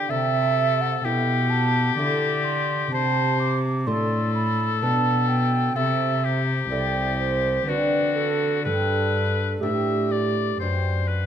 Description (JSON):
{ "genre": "classical, baroque-style sonata movement with continuo", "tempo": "63 BPM", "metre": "3/4", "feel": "straight", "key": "G major", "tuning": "A4 = 440 Hz", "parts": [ { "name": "bright oboe", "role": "melody", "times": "0.0-11.3 s", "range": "F#4 to E5", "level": "-26 LUFS", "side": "left 8 dB", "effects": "none" }, { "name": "baroque flute", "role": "second line", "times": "0.0-10.6 s", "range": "G4 to D6", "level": "-26 LUFS", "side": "right 7 dB", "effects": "none" }, { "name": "lute", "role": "accompaniment", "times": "0.0-11.3 s", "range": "F#2 to B4", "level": "-30 LUFS", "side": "left 2 dB", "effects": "none" }, { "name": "rich cello", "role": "bass", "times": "0.0-11.3 s", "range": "C2 to D3", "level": "-25 LUFS", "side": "equal", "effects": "none" } ], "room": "moderate recital hall reverb, RT60 1.5 s", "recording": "none", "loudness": "-20 LUFS", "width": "side -9 dB against mid", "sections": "0.0-11.3 A section", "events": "none", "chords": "0.1 Am7; 2.9 D5/C; 4.8 G/B; 5.8 Am/C; 7.7 D7; 8.7 G" }